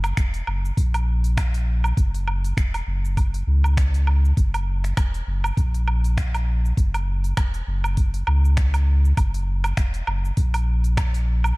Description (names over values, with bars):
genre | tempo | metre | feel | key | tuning
organic downtempo | 100 BPM | 4/4 | swing 56% on 16ths | F# mixolydian | A4 = 440 Hz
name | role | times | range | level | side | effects
warm sub bass | bass | 0.0-11.5 s | E1 to C#2 | -20 LUFS | equal | sidechain pumping
afro-pop drum kit | drums | 0.0-11.6 s | cabasa, finger snaps, hi-hat, woodblock | -30 LUFS | right 2 dB | none
electronic kick drum | drums | 0.2-11.1 s | none | -21 LUFS | equal | none
room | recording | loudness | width
digital ambience | dark, warm production | -19 LUFS | side -24 dB against mid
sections
0.0-11.6 A section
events
none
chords
none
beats
0.17 0.77 1.37 | 1.97 2.57 3.17 3.77 | 4.37 4.97 5.57 6.17 | 6.77 7.37 7.97 8.57 | 9.17 9.77 10.37 10.97